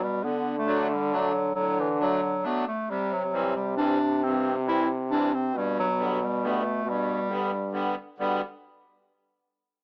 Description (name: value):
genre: alpine folk, alpine dance band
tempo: 136 BPM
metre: 3/4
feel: straight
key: G major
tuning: A4 = 441 Hz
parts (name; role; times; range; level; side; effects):
- mellow clarinet; melody; 0.0-8.4 s; E3 to E4; -30 LUFS; equal; cassette tape
- warm euphonium; second line; 0.0-8.4 s; G2 to D3; -32 LUFS; equal; cassette tape
- accordion; accompaniment; 0.2-8.4 s; G2 to D4; -33 LUFS; equal; cassette tape
room: moderate small room reverb, RT60 0.5 s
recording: home recording on cassette, AM radio sound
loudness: -27 LUFS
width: mono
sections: 0.0-8.2 A section; 8.2-9.5 B section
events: none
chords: 0.2 D; 2.9 C; 5.5 G